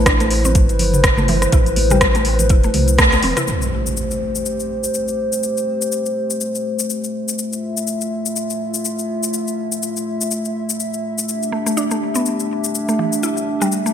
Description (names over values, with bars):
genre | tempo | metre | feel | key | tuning
afro house | 123 BPM | 4/4 | swing 57% on 16ths | A minor | A4 = 439 Hz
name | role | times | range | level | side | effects
dark analog pad | sustained chords | 0.0-13.9 s | A3 to E5 | -21 LUFS | left 1 dB | wide subtle chorus, sidechain pumping
mallet-like synth pluck | arpeggios | 0.0-3.5, 11.5-13.9 s | E3 to E4 | -22 LUFS | equal | chorus, vintage 12-bit sampler grit, sidechain pumping, ping-pong delay
warm sub bass | bass | 0.0-3.3 s | E1 to C2 | -19 LUFS | equal | sidechain pumping
afro-pop drum kit | drums | 0.1-13.9 s | cabasa, hi-hat, rim click, toms | -20 LUFS | left 1 dB | gated reverb
electronic kick drum | drums | 0.1-3.1 s | none | -16 LUFS | equal | none
congas | percussion | 0.2-3.3 s | none | -26 LUFS | right 2 dB | none
impact | sound effects | 3.5-5.4 s | none | -25 LUFS | equal | none
room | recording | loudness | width
moderate lush hall reverb, RT60 1.6 s, digital ambience | bright 1980s-style digital production | -16 LUFS | side -9 dB against mid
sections
0.0-3.5 A section; 3.5-13.9 B section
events
band accent 3.0; drum fill 3.2; impact 3.5-5.4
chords
0.0 Cmaj7; 3.5 Am7; 7.4 Fmaj7/A; 11.3 Em7